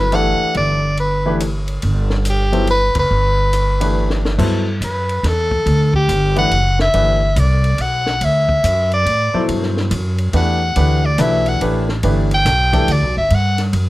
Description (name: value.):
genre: modal jazz.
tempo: 141 BPM.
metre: 3/4.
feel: swing 65% on 8ths.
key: G major.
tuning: A4 = 440 Hz.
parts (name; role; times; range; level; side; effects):
edgy soprano saxophone; melody; 0.0-13.6 s; G4 to G5; -17 LUFS; equal; none.
clear grand piano; accompaniment; 0.0-7.2, 9.3-12.9 s; B2 to C5; -20 LUFS; left 1 dB; none.
upright bass; bass; 0.0-13.9 s; F#1 to A2; -17 LUFS; equal; none.
compact cocktail drum kit; drums; 0.1-13.9 s; crash cymbal, hi-hat, kick drum, ride cymbal, snare drum; -27 LUFS; left 1 dB; none.
room: light reverb.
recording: none.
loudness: -14 LUFS.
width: side -17 dB against mid.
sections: 0.0-4.4 A section; 4.4-13.9 B section.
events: band accent 2.9; drum fill 4.0-4.4; soprano saxophone solo 4.4-13.9.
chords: 0.0 Gadd9; 4.4 Gmaj9.